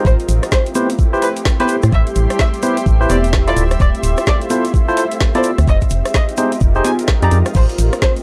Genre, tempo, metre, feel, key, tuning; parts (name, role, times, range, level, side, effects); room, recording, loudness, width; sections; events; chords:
UK garage, two-step garage; 128 BPM; 4/4; swing 62% on 16ths; A minor; A4 = 441 Hz
soft string machine; sustained chords; 0.0-8.2 s; Ab3 to A4; -30 LUFS; equal; phaser, ensemble chorus, sidechain pumping
barky tine electric piano; stabs; 0.0-7.4 s; Eb4 to D5; -21 LUFS; equal; overdrive, vintage 12-bit sampler grit
granular cloud pad; texture; 0.0-8.2 s; F4 to C6; -27 LUFS; equal; built-in reverb, sidechain pumping
warm studio violin section; melody; 0.1-8.1 s; B4 to Bb5; -26 LUFS; equal
organ-like FM bass; bass; 0.1-7.9 s; D1 to A2; -17 LUFS; equal; sidechain pumping
electronic kick drum; drums; 0.1-8.1 s; -17 LUFS; equal; overdrive, studio reverb
egg shaker; percussion; 0.1-8.2 s; -36 LUFS; equal
garage drum kit; drums; 0.2-8.2 s; congas, crash cymbal, hi-hat, rim click, snare drum; -23 LUFS; equal; overdrive, studio reverb
little or no reverb; dry, gritty hardware recording, cassette tape; -15 LUFS; mono
0.0-8.2 A section
0.1 Am7; 3.6 Dm7; 5.7 Fm7; 7.6 Am7